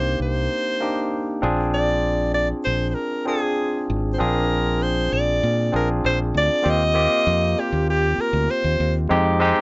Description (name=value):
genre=lush 1970s-style soul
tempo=98 BPM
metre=4/4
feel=straight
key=Eb major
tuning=A4 = 440 Hz
part: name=clear alto saxophone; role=melody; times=0.0-9.0 s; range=G4 to Eb5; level=-25 LUFS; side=equal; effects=none
part: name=barky tine electric piano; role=accompaniment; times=0.0-9.6 s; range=Ab3 to Ab4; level=-26 LUFS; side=equal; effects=none
part: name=fingered electric bass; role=bass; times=0.0-9.5 s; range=Ab1 to Bb2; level=-26 LUFS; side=equal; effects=none
room=light reverb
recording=nothing above 7.6 kHz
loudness=-21 LUFS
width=mono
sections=0.0-6.6 A section; 6.6-9.6 B section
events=none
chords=0.0 Cm7; 1.4 Bb7; 6.6 Eb69; 9.1 Fm7